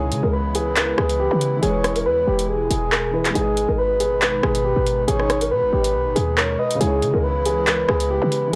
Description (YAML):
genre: hip hop, drill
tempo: 139 BPM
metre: 4/4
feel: half-time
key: unclear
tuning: A4 = 440 Hz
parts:
  - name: dark concert grand piano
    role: melody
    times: 0.0-8.6 s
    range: G4 to B4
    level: -26 LUFS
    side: equal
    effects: digital delay
  - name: breathy flute-like synth lead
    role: second line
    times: 0.0-8.6 s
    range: G#4 to D#5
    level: -25 LUFS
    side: equal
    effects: chorus, digital delay
  - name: dark baby grand piano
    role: accompaniment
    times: 0.0-8.6 s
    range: C#3 to D#5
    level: -31 LUFS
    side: equal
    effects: none
  - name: hollow soft pad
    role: sustained chords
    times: 0.0-8.6 s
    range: B2 to E4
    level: -32 LUFS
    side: equal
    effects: ensemble chorus
  - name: short 808-style bass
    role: bass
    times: 0.0-8.5 s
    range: E1 to C#3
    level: -27 LUFS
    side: equal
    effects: none
  - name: drill drum kit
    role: drums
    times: 0.1-8.4 s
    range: handclaps, hi-hat, rim click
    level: -25 LUFS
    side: equal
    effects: none
room: light reverb, digital ambience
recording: blown-out, overdriven recording, overdrive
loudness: -20 LUFS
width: mono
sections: 0.0-8.6 A section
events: none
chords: 0.0 C#m; 1.6 E; 3.4 G#m; 6.8 C#m